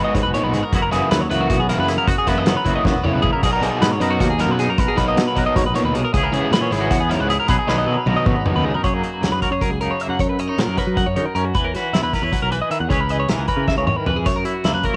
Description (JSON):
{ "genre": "math rock and midwest emo", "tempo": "310 BPM (eighths)", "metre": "7/8", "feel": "straight", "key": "B major", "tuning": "A4 = 440 Hz", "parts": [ { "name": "twangy electric guitar", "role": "accompaniment", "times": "0.0-15.0 s", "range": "F#2 to B4", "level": "-26 LUFS", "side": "equal", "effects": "tremolo, cassette tape" }, { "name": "twelve-string electric guitar", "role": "arpeggios", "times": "0.0-15.0 s", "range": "E4 to F#5", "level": "-24 LUFS", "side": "equal", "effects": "cassette tape, tape echo" }, { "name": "overdriven electric guitar", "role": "riff", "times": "0.0-8.7 s", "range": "B2 to E4", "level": "-25 LUFS", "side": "equal", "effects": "cassette tape" }, { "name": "picked electric bass", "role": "bass", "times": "0.0-15.0 s", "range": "E1 to F#3", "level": "-26 LUFS", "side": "equal", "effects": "none" }, { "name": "loose indie drum kit", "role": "drums", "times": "0.1-14.9 s", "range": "crash cymbal, hi-hat, kick drum, snare drum, splash cymbal, toms", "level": "-25 LUFS", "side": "equal", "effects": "none" } ], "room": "light reverb", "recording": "home recording on cassette", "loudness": "-19 LUFS", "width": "mono", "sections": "0.0-8.8 A section; 8.8-15.0 B section", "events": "drum fill 2.9-3.4, 7.7-8.8, 13.7-14.3", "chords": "0.0 G#m7; 0.7 F#7sus4; 3.4 Bmaj7; 6.1 C#m7; 7.5 B6; 8.8 F#13; 10.2 Bmaj9/F#; 11.6 Esus2; 12.9 C#m7; 14.3 F#7" }